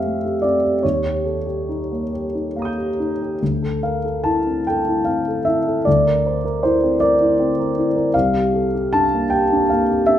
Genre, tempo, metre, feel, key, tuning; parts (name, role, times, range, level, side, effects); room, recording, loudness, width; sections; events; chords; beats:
classical, impressionist solo piano; 46-54 BPM (dotted quarters); 6/8; rubato; A4 = 440 Hz
warm grand piano; solo; 0.0-10.2 s; C2 to G6; -17 LUFS; equal
moderate recital hall reverb, RT60 1.4 s; minimal, uncompressed stereo recording; -17 LUFS; side -11 dB against mid
0.0-10.2 A section
0.0 Fmaj9; 0.8 Eb9; 3.4 Dsus2; 5.9 C9/D; 8.1 C9sus4
| 0.83 2.11 | 3.41 4.67 | 5.86 7.01 | 8.14 9.30